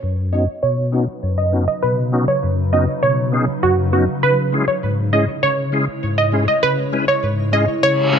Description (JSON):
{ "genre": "dancehall", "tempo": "100 BPM", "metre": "4/4", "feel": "straight", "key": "B major", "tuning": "A4 = 440 Hz", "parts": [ { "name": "bright tonewheel organ", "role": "accompaniment", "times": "0.0-8.2 s", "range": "F#2 to B4", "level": "-19 LUFS", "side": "left 2 dB", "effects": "overdrive, chorus vibrato, slow rotary speaker, low-pass filter" }, { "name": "granular cloud pad", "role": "sustained chords", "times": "1.1-8.2 s", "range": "C#3 to C#5", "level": "-24 LUFS", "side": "equal", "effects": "built-in reverb, low-pass filter" }, { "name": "glassy wavetable pluck", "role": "melody", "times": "0.3-8.2 s", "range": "F#4 to D#5", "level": "-19 LUFS", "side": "right 2 dB", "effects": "chorus, low-pass filter, tape echo" }, { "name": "reverse cymbal", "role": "sound effects", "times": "8.0-8.2 s", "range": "none", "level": "-20 LUFS", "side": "right 2 dB", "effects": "none" } ], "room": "light reverb", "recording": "none", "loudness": "-15 LUFS", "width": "side -7 dB against mid", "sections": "0.0-8.2 A section", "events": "filter sweep 0.0-8.2; reverse cymbal 8.0", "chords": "0.0 Badd9; 4.2 C#m" }